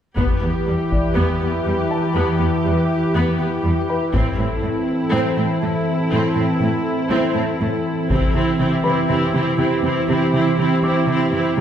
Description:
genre	cinematic, hybrid orchestral and electronic film score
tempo	121 BPM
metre	4/4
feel	straight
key	E minor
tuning	A4 = 440 Hz
part	clear symphonic viola section	accompaniment	0.2-11.6 s	G3 to G4	-22 LUFS	right 1 dB	none
part	chorused pulse-width pad	sustained chords	0.2-11.6 s	E3 to B4	-20 LUFS	equal	none
part	rich studio cello section	bass	0.2-11.6 s	E2 to C3	-23 LUFS	right 1 dB	none
part	taiko ensemble	drums	0.2-1.1, 4.1-5.1, 8.1-9.1 s	none	-23 LUFS	left 1 dB	none
part	warm baby grand piano	texture	0.9-11.6 s	B4 to D6	-30 LUFS	left 2 dB	ping-pong delay
room	wet scoring stage reverb, RT60 1.6 s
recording	heard from further back in the room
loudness	-17 LUFS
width	side -9 dB against mid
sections	0.2-11.6 A section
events	build-up 0.2-11.6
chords	0.2 Em; 4.1 Am; 8.1 C

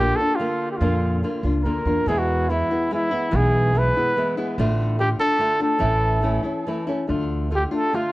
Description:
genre	mexican folk, mariachi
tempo	143 BPM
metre	3/4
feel	rubato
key	D harmonic minor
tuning	A4 = 440 Hz
part	warm trumpet	melody	0.0-8.1 s	E4 to B4	-22 LUFS	right 1 dB	tape echo
part	nylon-string guitar	accompaniment	0.0-8.1 s	E2 to F4	-24 LUFS	left 1 dB	none
part	upright bass	bass	0.0-7.6 s	A1 to F2	-23 LUFS	equal	transformer saturation
room	light reverb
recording	worn, warbling old tape, cassette tape, warbly pitch drift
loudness	-19 LUFS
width	side -18 dB against mid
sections	0.0-8.1 A section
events	none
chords	0.0 Bb; 2.1 E; 4.6 Dm/A; 5.8 A; 7.1 Dm

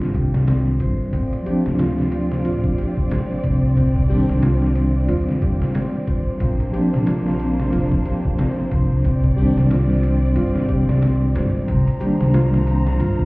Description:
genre	trip hop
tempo	91 BPM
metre	4/4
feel	swing 58% on 16ths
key	C dorian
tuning	A4 = 439 Hz
part	bell-like tine electric piano	accompaniment	0.0-13.2 s	Eb3 to D4	-22 LUFS	equal	tremolo, tape echo
part	concert harp	arpeggios	0.0-13.2 s	C4 to C5	-28 LUFS	equal	digital delay
part	trip hop sampler-style drum kit	drums	0.0-13.2 s	hi-hat, kick drum, ride cymbal, snare drum	-23 LUFS	equal	none
part	upright bass	bass	0.1-13.2 s	F1 to F2	-20 LUFS	equal	tube saturation
part	tube shaker	percussion	0.5-13.2 s	none	-66 LUFS	left 2 dB	none
part	bright symphonic violin section	sustained chords	1.1-13.2 s	Bb3 to Bb5	-29 LUFS	equal	vintage 12-bit sampler grit
room	light reverb, studio reverb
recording	heard muffled through a wall, club reverb, EQ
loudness	-16 LUFS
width	side -23 dB against mid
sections	0.0-11.7 A section; 11.7-13.2 B section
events	none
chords	0.0 Cmadd9; 1.1 Dm7; 3.8 Cmadd9; 6.4 Bbadd9; 9.0 Cmadd9; 11.7 Cm7

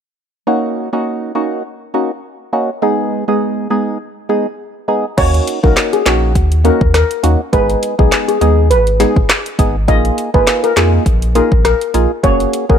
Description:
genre	dancehall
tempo	102 BPM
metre	4/4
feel	swing 56% on 16ths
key	Eb minor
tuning	A4 = 440 Hz
part	percussive organ stab	accompaniment	0.5-12.8 s	Ab3 to Ab4	-16 LUFS	right 1 dB	chorus, phaser
part	steel pan	melody	5.2-12.8 s	Gb4 to Eb5	-16 LUFS	left 2 dB	none
part	warm sub bass	bass	5.2-12.8 s	Gb1 to F2	-14 LUFS	equal	none
part	afro-pop drum kit	drums	5.2-12.8 s	crash cymbal, handclaps, hi-hat, kick drum, rim click, snare drum	-15 LUFS	equal	none
room	little or no reverb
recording	none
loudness	-12 LUFS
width	side -8 dB against mid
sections	0.5-5.2 A section; 5.2-12.8 B section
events	none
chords	0.5 Ebm7; 2.8 Abm; 5.2 Ebm7; 7.5 Abm; 9.9 Bb7sus4; 12.2 Gbadd9

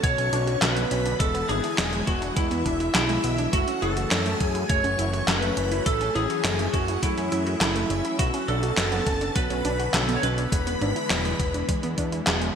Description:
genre	synthwave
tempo	103 BPM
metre	4/4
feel	straight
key	B dorian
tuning	A4 = 440 Hz
part	lightly driven lead guitar	melody	0.0-12.2 s	E4 to C#5	-27 LUFS	equal	wide subtle chorus, ping-pong delay
part	string machine, violins	second line	0.0-12.2 s	E5 to C#6	-34 LUFS	equal	ensemble chorus
part	soft supersaw	sustained chords	0.0-12.6 s	D3 to G#4	-33 LUFS	equal	lush chorus, sidechain pumping
part	wide unison pluck	arpeggios	0.0-12.6 s	G#3 to B4	-32 LUFS	right 3 dB	ping-pong delay
part	fat analog bass	bass	0.0-12.5 s	E1 to F#2	-29 LUFS	equal	sidechain pumping
part	electronic kick drum	drums	0.0-12.1 s	none	-27 LUFS	equal	none
part	gated 80s digital drum machine	drums	0.0-12.5 s	handclaps, hi-hat, snare drum	-27 LUFS	equal	gated reverb, gated reverb snare
room	moderate lush hall reverb, RT60 2.0 s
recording	bright 1980s-style digital production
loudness	-22 LUFS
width	side -7 dB against mid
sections	0.0-12.6 A section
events	none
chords	0.0 Bmadd9; 1.2 E7; 3.5 F#m7; 8.2 Bmadd9; 10.5 E7

